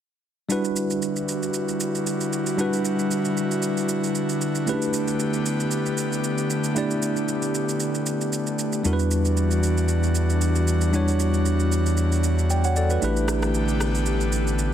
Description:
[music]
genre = amapiano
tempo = 115 BPM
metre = 4/4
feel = swing 55% on 16ths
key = E minor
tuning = A4 = 440 Hz
[part]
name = bright tine electric piano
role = accompaniment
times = 0.5-14.7 s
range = G3 to G5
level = -25 LUFS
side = right 2 dB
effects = medium stereo tremolo
[part]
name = airy breathy pad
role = sustained chords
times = 0.5-14.7 s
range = D3 to G4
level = -26 LUFS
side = left 2 dB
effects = chorus
[part]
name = electronic shaker and rim click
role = drums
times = 0.5-14.7 s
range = none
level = -32 LUFS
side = right 4 dB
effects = overdrive
[part]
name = saturated sub bass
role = bass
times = 8.8-14.7 s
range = A1 to E2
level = -22 LUFS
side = equal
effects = none
[sound]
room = light reverb, digital ambience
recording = dense, heavily limited modern master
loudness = -21 LUFS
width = side -10 dB against mid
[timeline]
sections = 0.5-14.7 A section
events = none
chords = 0.5 Em9; 4.7 A9sus4; 8.8 Em9; 13.0 A9sus4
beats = | 0.50 1.02 1.54 2.07 | 2.59 3.11 3.63 4.15 | 4.67 5.20 5.72 6.24 | 6.76 7.28 7.80 8.33 | 8.85 9.37 9.89 10.41 | 10.94 11.46 11.98 12.50 | 13.02 13.54 14.07 14.59

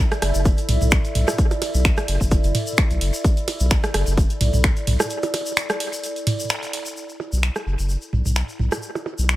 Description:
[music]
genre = minimal techno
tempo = 129 BPM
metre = 4/4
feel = swing 55% on 16ths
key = B minor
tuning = A4 = 440 Hz
[part]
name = saturated sub bass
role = bass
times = 0.0-9.4 s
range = F#1 to B1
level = -20 LUFS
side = equal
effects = sidechain pumping
[part]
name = tube shaker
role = percussion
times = 0.0-9.4 s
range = none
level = -34 LUFS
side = left 2 dB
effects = analog delay
[part]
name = warbly tape-like pad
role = texture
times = 0.0-9.4 s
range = E4 to F#5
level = -30 LUFS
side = equal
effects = chorus, built-in reverb, sidechain pumping
[part]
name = punchy analog drum machine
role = drums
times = 0.1-9.4 s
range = finger snaps, hi-hat, ride cymbal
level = -25 LUFS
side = equal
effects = none
[part]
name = minimal click drum kit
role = percussion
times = 0.1-9.2 s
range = percussion blips, rim click, toms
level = -25 LUFS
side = right 2 dB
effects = overdrive, analog delay
[part]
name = electronic kick drum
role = drums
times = 0.5-4.7 s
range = none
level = -19 LUFS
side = equal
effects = none
[sound]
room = light reverb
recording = echo-heavy mix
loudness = -18 LUFS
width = side -16 dB against mid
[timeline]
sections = 0.0-7.0 A section; 7.0-9.4 B section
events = drop 0.0-7.0; break 5.1-7.0; band accent 6.5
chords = 0.0 Bm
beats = 0.45 0.92 | 1.39 1.85 2.31 2.78 | 3.25 3.71 4.17 4.64 | 5.11 5.57 6.04 6.50 | 6.97 7.43 7.90 8.36 | 8.83 9.29

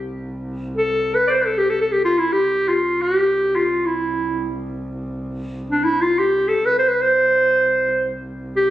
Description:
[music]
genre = Arabic maqam ensemble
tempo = free time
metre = none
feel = none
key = C maqam ajam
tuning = A4 = 439 Hz
[part]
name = rich double bass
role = drone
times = 0.0-8.7 s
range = C2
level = -32 LUFS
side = equal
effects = none
[part]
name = bright clarinet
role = melody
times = 0.8-8.7 s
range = D4 to D5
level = -16 LUFS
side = equal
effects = none
[sound]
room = moderate recital hall reverb, RT60 1.6 s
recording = recorded on a phone in the room, studio reverb, compression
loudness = -16 LUFS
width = side -13 dB against mid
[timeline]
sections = 0.0-8.7 A section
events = none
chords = none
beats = free time

